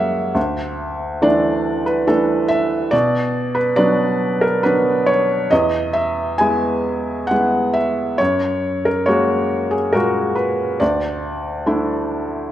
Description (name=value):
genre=classical, lyrical solo piano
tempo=69 BPM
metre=3/4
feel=rubato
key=unclear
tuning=A4 = 442 Hz
part: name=felt-muted upright piano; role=solo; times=0.0-12.5 s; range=D2 to G#5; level=-16 LUFS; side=equal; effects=none
room=moderate concert hall reverb, RT60 1.9 s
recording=minimal, uncompressed stereo recording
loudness=-16 LUFS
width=side -12 dB against mid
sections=0.0-12.5 A section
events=none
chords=0.4 Dsus2; 2.9 Bm; 5.5 E; 8.2 F#add9; 10.8 Dsus2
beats=| 0.36 1.23 2.08 | 2.93 3.78 4.64 | 5.51 6.40 7.29 | 8.20 9.08 9.95 | 10.81 11.67 12.52